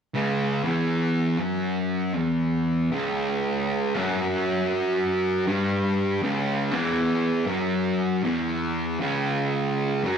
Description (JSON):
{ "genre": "metal", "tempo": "79 BPM", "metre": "4/4", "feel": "swing 64% on 8ths", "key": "C# minor", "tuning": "A4 = 441 Hz", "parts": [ { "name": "fuzz guitar", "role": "solo", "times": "0.1-10.2 s", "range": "C#2 to G3", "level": "-22 LUFS", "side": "equal", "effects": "distortion" } ], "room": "moderate large studio reverb, RT60 1.2 s, digital ambience", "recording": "dark, warm production", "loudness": "-22 LUFS", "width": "side -7 dB against mid", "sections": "0.2-10.2 A section", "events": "none", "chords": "0.2 C#m", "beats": "| 0.15 0.91 1.67 2.43 | 3.19 3.95 4.71 5.47 | 6.23 6.99 7.75 8.51 | 9.27 10.03" }